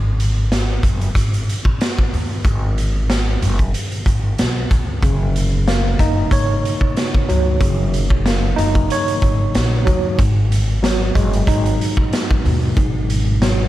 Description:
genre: hip hop, boom-bap hip-hop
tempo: 93 BPM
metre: 4/4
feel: swing 55% on 16ths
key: G# minor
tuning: A4 = 439 Hz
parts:
  - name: upright bass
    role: bass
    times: 0.0-13.7 s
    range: F#1 to D#2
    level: -19 LUFS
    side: equal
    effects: none
  - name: raw garage drum kit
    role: drums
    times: 0.2-13.6 s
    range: hi-hat, kick drum, snare drum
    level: -18 LUFS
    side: equal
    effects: none
  - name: tine electric piano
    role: accompaniment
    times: 5.0-13.7 s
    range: G#2 to C#5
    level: -20 LUFS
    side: equal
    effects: overdrive, fast stereo tremolo, high-pass filter, low-pass filter
room: light reverb, small room ambience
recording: vinyl crackle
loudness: -15 LUFS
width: side -14 dB against mid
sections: 0.0-10.2 A section; 10.2-13.7 B section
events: break 0.0-5.0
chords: 0.0 N.C.; 5.0 F#6; 10.2 G#m7

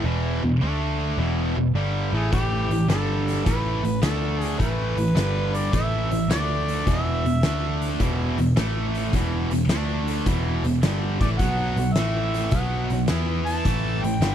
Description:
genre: blues rock power trio and southern rock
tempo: 106 BPM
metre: 4/4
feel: swing 67% on 8ths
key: unclear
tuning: A4 = 440 Hz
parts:
  - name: tight distorted guitar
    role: riff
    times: 0.0-14.3 s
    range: E2 to E4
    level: -25 LUFS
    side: right 1 dB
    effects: distortion
  - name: vintage muted picked electric bass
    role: bass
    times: 0.0-14.3 s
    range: E1 to E2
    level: -25 LUFS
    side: equal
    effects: none
  - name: mellow harmonica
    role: melody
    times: 2.1-14.3 s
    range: G4 to A5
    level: -29 LUFS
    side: equal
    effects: overdrive
  - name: oversized low-tuned drum kit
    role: drums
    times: 2.3-14.3 s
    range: hi-hat, kick drum, snare drum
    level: -27 LUFS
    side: equal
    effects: none
room: little or no reverb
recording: none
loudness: -21 LUFS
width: side -10 dB against mid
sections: 0.0-14.3 A section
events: none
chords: 0.0 E5; 0.6 D5; 1.2 E5; 2.3 A5; 2.9 G5; 3.5 A5; 4.0 D5; 4.6 A5; 5.2 G5; 5.7 A5; 6.3 D5; 6.9 E5; 7.4 D5; 8.0 E5; 8.6 A5; 9.1 E5; 9.7 D5; 10.3 E5; 11.4 B5; 12.0 A5; 12.5 B5; 13.1 E5; 13.7 A5

